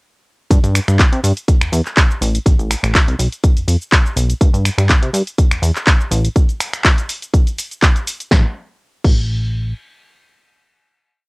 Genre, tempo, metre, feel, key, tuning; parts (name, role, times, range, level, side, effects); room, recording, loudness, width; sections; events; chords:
filtered disco house; 123 BPM; 4/4; swing 53% on 16ths; A minor; A4 = 439 Hz
plucky analog bass; bass; 0.5-9.7 s; A1 to C3; -16 LUFS; equal; sidechain pumping
electronic kick drum; drums; 0.5-9.2 s; -12 LUFS; equal; cassette tape
punchy analog drum machine; drums; 0.5-9.2 s; cabasa, crash cymbal, finger snaps, handclaps, hi-hat, snare drum; -18 LUFS; equal; sidechain pumping on hats, cassette tape, sidechain pumping on perc, sidechain pumping on cymbals
little or no reverb; home recording on cassette; -13 LUFS; side -31 dB against mid
0.5-8.3 drop; 8.3-11.3 final note
drop 0.5-8.3